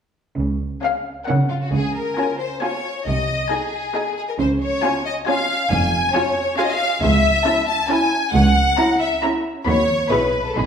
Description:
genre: cinematic, playful, whimsical film cue.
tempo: 136 BPM.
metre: 3/4.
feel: straight.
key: Db major, E major from 7.0 s.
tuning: A4 = 440 Hz.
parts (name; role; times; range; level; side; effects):
clear studio double bass section; bass; 0.4-10.7 s; F1 to D#2; -23 LUFS; right 2 dB; none.
rich studio cello section; bass; 0.4-10.7 s; C#2 to Db3; -23 LUFS; right 2 dB; none.
warm studio violin section; melody; 0.8-10.7 s; F5 to B5; -26 LUFS; left 4 dB; none.
clear studio violin section; second line; 0.8-10.7 s; F4 to A5; -20 LUFS; left 2 dB; none.
rich studio viola section; accompaniment; 0.8-10.7 s; B3 to Ab4; -25 LUFS; right 1 dB; none.
room: wet recital hall reverb, RT60 1.3 s.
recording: recorded in a church or concert hall.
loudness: -17 LUFS.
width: side -7 dB against mid.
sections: 0.4-1.7 A section; 1.7-10.7 B section.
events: none.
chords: 0.4 Db; 3.1 Ab/C; 4.4 Db; 5.7 Db/F; 7.0 A/C#; 9.7 B/D#; 10.1 E/B.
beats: | 0.39 0.83 1.28 | 1.73 2.18 2.62 | 3.07 3.51 3.95 | 4.39 4.83 5.27 | 5.71 6.15 6.59 | 7.03 7.46 7.90 | 8.35 8.79 9.23 | 9.67 10.12 10.57.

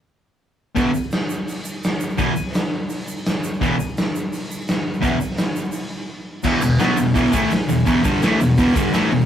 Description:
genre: garage rock duo or trio.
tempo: 169 BPM.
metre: 4/4.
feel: straight.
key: E minor.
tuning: A4 = 441 Hz.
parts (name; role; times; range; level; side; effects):
fuzz guitar; riff; 0.8-9.3 s; E2 to B3; -17 LUFS; equal; distortion.
raw garage drum kit; drums; 0.8-9.2 s; crash cymbal, hi-hat, kick drum, snare drum; -22 LUFS; equal; none.
tube shaker; percussion; 0.8-9.3 s; none; -39 LUFS; right 4 dB; none.
room: moderate small room reverb, RT60 0.5 s.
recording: rough rehearsal-room recording, tube saturation.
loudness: -18 LUFS.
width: side -10 dB against mid.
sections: 0.0-6.4 A section; 6.4-9.3 B section.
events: break 6.1-6.4.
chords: 0.0 E5; 6.4 Em.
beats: 0.05 0.40 | 0.76 1.11 1.47 1.82 | 2.18 2.53 2.89 3.24 | 3.60 3.95 4.31 4.66 | 5.02 5.38 5.73 6.09 | 6.44 6.80 7.15 7.51 | 7.86 8.22 8.58 8.93.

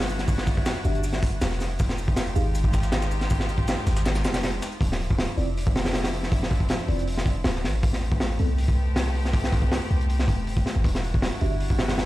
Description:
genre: drum and bass, jungle.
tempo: 159 BPM.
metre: 4/4.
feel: straight.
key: D dorian.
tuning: A4 = 438 Hz.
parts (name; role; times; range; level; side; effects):
rich chamber string section; sustained chords; 0.0-12.1 s; F3 to G4; -34 LUFS; equal; vintage 12-bit sampler grit.
warm 808-style bass; bass; 0.0-12.1 s; D1 to C2; -26 LUFS; equal; none.
breakbeat sampler-style drum kit; drums; 0.0-4.8 s; hi-hat, shaker, snare drum; -38 LUFS; left 2 dB; high-pass filter on perc, high-pass filter on snare, high-pass filter on hats.
crunchy breakbeat drum kit; drums; 0.0-12.1 s; hi-hat, kick drum, snare drum; -25 LUFS; equal; none.
mellow tine electric piano; stabs; 0.8-2.5, 5.4-8.5, 11.4-11.5 s; G3 to F5; -35 LUFS; right 1 dB; medium stereo tremolo, dub echo.
room: little or no reverb.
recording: played on a big sound system in a bare room, stone room reverb, lossy compression artefacts.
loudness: -22 LUFS.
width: side -16 dB against mid.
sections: 0.0-4.8 A section; 4.8-12.1 A section.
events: drop 0.0-4.8, 4.8-12.1.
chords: 0.0 Em9; 1.8 Fm9; 4.8 Dm9; 7.8 Am9; 10.8 Em9.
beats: | 0.28 0.66 1.04 1.42 | 1.79 2.17 2.55 2.92 | 3.30 3.68 4.06 4.43 | 4.81 5.19 5.57 5.94 | 6.32 6.70 7.08 7.45 | 7.83 8.21 8.59 8.96 | 9.34 9.72 10.09 10.47 | 10.85 11.23 11.60 11.98.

